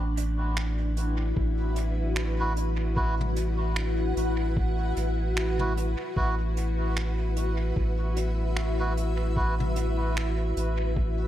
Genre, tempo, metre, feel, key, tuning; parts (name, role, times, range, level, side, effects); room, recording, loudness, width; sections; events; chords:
ambient dub; 75 BPM; 4/4; swing 58% on 16ths; A4 = 440 Hz
granular cloud pad; sustained chords; 0.0-11.3 s; D4 to F#5; -32 LUFS; left 1 dB; built-in reverb
warm sub bass; bass; 0.0-11.3 s; A1; -27 LUFS; equal
jazz brush drum kit; drums; 0.2-10.8 s; finger snaps, hi-hat, toms; -38 LUFS; right 1 dB; dub echo
electronic kick drum; drums; 1.4-11.2 s; -28 LUFS; equal
melodica; stabs; 2.4-9.6 s; E4 to B4; -36 LUFS; right 1 dB; dub echo
light reverb, studio reverb; echo-heavy mix; -25 LUFS; side -12 dB against mid
0.0-11.3 A section
0.0 Esus2/A